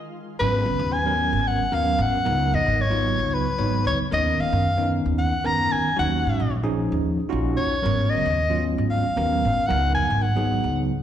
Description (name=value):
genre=jazz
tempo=226 BPM (eighths)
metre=7/8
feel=straight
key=G# dorian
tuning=A4 = 440 Hz
part: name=warm soprano saxophone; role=melody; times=0.4-10.8 s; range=B4 to A#5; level=-24 LUFS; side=left 1 dB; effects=slapback echo
part: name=bell-like tine electric piano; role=accompaniment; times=0.4-10.9 s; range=D#3 to C#5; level=-26 LUFS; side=equal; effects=medium stereo tremolo, slapback echo
part: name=upright bass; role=bass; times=0.4-10.9 s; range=G#1 to G#2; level=-24 LUFS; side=equal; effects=none
room=light reverb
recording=live gig heard through the venue's PA, recital hall reverb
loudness=-20 LUFS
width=side -10 dB against mid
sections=0.4-11.0 A section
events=stop 0.0-0.4; tine electric piano fill 10.7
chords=0.4 G#m11; 2.3 C#13sus4; 4.1 Bmaj9/D#; 6.0 D#m9; 7.8 G#m11